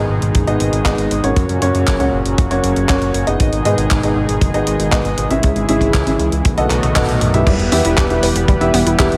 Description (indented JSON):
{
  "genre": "italo disco",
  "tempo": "118 BPM",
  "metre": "4/4",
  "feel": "straight",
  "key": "unclear",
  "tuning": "A4 = 437 Hz",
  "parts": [
    { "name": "warm analog pad", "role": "sustained chords", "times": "0.0-9.2 s", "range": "A#2 to B4", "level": "-23 LUFS", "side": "equal", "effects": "chorus, tremolo" },
    { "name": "dark concert grand piano", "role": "stabs", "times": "0.0-9.2 s", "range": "A#3 to E5", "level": "-21 LUFS", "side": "equal", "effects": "none" },
    { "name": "fat analog bass", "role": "bass", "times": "0.0-9.2 s", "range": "D1 to G#2", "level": "-22 LUFS", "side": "equal", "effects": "none" },
    { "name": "clean 12-bit digital drum machine", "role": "drums", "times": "0.2-9.2 s", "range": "crash cymbal, handclaps, hi-hat, toms", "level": "-24 LUFS", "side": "equal", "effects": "gated reverb" },
    { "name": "kick drum", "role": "drums", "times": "0.4-9.1 s", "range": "none", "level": "-18 LUFS", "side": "equal", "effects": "none" },
    { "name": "analog pluck", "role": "arpeggios", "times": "7.5-9.1 s", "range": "G3 to B4", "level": "-23 LUFS", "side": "equal", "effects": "chorus, cassette tape, digital delay" }
  ],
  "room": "light reverb, small room ambience",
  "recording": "none",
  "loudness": "-15 LUFS",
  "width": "mono",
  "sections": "0.0-7.5 A section; 7.5-9.2 B section",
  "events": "drum fill 6.4-7.5; band accent 7.0",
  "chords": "0.0 F#; 3.4 G#m; 5.4 C#m; 6.4 B7; 7.5 Em"
}